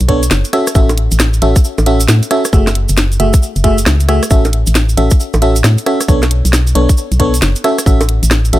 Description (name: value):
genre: UK garage, two-step garage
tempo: 135 BPM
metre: 4/4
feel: swing 64% on 16ths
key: A major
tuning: A4 = 440 Hz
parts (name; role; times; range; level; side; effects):
- organ-like FM bass; bass; 0.0-8.6 s; F#1 to A2; -12 LUFS; equal; sidechain pumping
- garage drum kit; drums; 0.0-8.6 s; bongos, hi-hat, rim click, snare drum; -16 LUFS; equal; none
- cabasa; percussion; 0.0-8.5 s; none; -22 LUFS; right 2 dB; none
- FM electric piano; stabs; 0.1-8.6 s; A3 to E5; -16 LUFS; equal; chorus, ping-pong delay
- electronic kick drum; drums; 0.1-8.0 s; none; -10 LUFS; equal; none
room: little or no reverb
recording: none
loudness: -9 LUFS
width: side -15 dB against mid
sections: 0.0-8.6 A section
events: none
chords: 0.0 Bm9; 0.5 A6; 2.5 F#m9; 4.3 A6; 6.1 Bm9; 7.6 A6